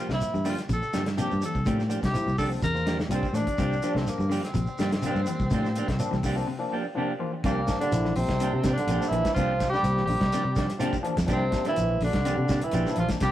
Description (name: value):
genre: afrobeat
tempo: 125 BPM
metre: 4/4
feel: straight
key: C mixolydian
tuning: A4 = 438 Hz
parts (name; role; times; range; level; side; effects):
- clear tenor saxophone; melody; 0.0-13.3 s; Bb3 to Bb4; -30 LUFS; equal; none
- barky tine electric piano; accompaniment; 0.0-13.2 s; F3 to F4; -34 LUFS; left 3 dB; overdrive
- clean electric guitar; stabs; 0.0-13.3 s; F3 to G4; -33 LUFS; right 3 dB; spring reverb
- clean electric guitar; arpeggios; 0.1-13.3 s; C3 to E3; -35 LUFS; left 4 dB; none
- fingered electric bass; bass; 0.1-13.3 s; Bb1 to C3; -28 LUFS; equal; none
- warm soul drum kit; drums; 0.1-13.3 s; hi-hat, kick drum, snare drum; -32 LUFS; equal; none
- shekere; percussion; 0.1-13.3 s; none; -36 LUFS; right 1 dB; none
- bright trombone; second line; 7.4-13.3 s; Bb2 to G3; -31 LUFS; right 2 dB; none
room: moderate studio ambience, RT60 0.5 s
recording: rough rehearsal-room recording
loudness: -24 LUFS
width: side -13 dB against mid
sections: 0.0-7.4 A section; 7.4-13.3 B section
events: break 6.5-7.4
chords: 0.0 C9sus4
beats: 0.22 0.70 1.18 | 1.66 2.15 2.63 3.11 | 3.59 4.07 4.55 5.03 | 5.51 5.99 6.47 6.96 | 7.44 7.92 8.40 8.88 | 9.36 9.84 10.32 10.81 | 11.29 11.77 12.25 12.73 | 13.21